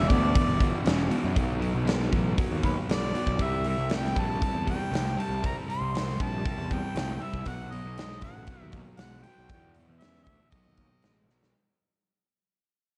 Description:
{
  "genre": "blues rock power trio and southern rock",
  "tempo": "118 BPM",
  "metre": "4/4",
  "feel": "straight",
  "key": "unclear",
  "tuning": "A4 = 440 Hz",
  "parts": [
    { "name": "warm harmonica", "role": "melody", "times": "0.0-11.2 s", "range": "B4 to C6", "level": "-36 LUFS", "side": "equal", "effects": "overdrive" },
    { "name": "overdriven semi-hollow guitar", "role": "riff", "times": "0.0-11.5 s", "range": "E2 to A3", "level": "-34 LUFS", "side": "equal", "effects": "none" },
    { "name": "fuzz picked electric bass", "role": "bass", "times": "0.0-11.5 s", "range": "E1 to F#2", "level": "-34 LUFS", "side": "equal", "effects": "overdrive" },
    { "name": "big rock drum kit", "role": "drums", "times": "0.1-11.5 s", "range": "hi-hat, kick drum, snare drum", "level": "-32 LUFS", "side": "equal", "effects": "none" }
  ],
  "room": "light reverb, small room ambience",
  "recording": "none",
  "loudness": "-28 LUFS",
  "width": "mono",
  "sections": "0.0-11.5 A section",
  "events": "fade-out 0.2-11.5; drum fill 11.3",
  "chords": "0.0 Em7; 1.4 B5; 3.4 C5; 7.5 B; 9.5 E5; 10.5 B7"
}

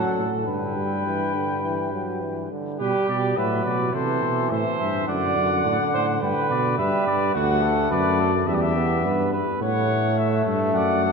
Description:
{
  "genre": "classical, imitative canzona for brass ensemble",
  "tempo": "105 BPM",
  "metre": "4/4",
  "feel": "straight",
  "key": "G major",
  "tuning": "A4 = 441 Hz",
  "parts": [
    { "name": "warm trumpet", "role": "melody", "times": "0.0-11.1 s", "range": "B4 to G5", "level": "-28 LUFS", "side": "left 8 dB", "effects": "none" },
    { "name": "warm flugelhorn", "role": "second line", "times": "0.0-11.1 s", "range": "F#4 to D5", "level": "-26 LUFS", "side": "right 3 dB", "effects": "none" },
    { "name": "clear trombone", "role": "accompaniment", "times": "0.0-11.1 s", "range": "D3 to B3", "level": "-26 LUFS", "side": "equal", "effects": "none" },
    { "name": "mellow tuba", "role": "bass", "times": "0.2-11.1 s", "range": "D2 to C3", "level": "-26 LUFS", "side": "right 1 dB", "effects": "none" }
  ],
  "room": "wet church reverb, RT60 3.4 s",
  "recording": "nothing above 10.6 kHz",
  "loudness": "-20 LUFS",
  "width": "side -5 dB against mid",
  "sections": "0.0-2.8 A section; 2.8-11.1 B section",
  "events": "none",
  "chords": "0.5 G; 2.8 G/B; 3.9 Am; 5.1 D/F#; 6.2 G; 7.3 D; 8.5 Em; 9.6 A"
}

